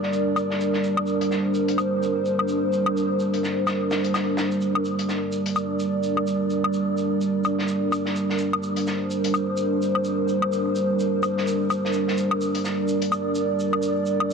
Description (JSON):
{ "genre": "bass house", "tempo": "127 BPM", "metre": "4/4", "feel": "swing 59% on 16ths", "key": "G minor", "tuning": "A4 = 439 Hz", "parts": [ { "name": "dark analog pad", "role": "sustained chords", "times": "0.0-14.3 s", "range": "G3 to D5", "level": "-22 LUFS", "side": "right 1 dB", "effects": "chorus" }, { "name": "vintage drum kit", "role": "drums", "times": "0.0-14.3 s", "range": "hi-hat, shaker, snare drum", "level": "-34 LUFS", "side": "left 1 dB", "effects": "high-pass filter on hats, low-pass filter on hats, high-pass filter on snare, low-pass filter on snare, high-pass filter on perc, low-pass filter on perc, high-pass filter on room, low-pass filter on room" }, { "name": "woodblock", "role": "drums", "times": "0.4-14.3 s", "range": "none", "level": "-30 LUFS", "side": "left 3 dB", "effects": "overdrive, low-pass filter on perc" } ], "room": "moderate lush hall reverb, RT60 2.5 s", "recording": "none", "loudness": "-21 LUFS", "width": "side -5 dB against mid", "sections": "0.0-14.3 A section", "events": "none", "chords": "0.0 Gm", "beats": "0.12 0.60 | 1.07 1.54 2.02 2.49 | 2.96 3.43 3.90 4.38 | 4.85 5.32 5.79 6.27 | 6.74 7.21 7.68 8.16 | 8.63 9.10 9.57 10.05 | 10.52 10.99 11.46 11.94 | 12.41 12.88 13.35 13.83 | 14.30" }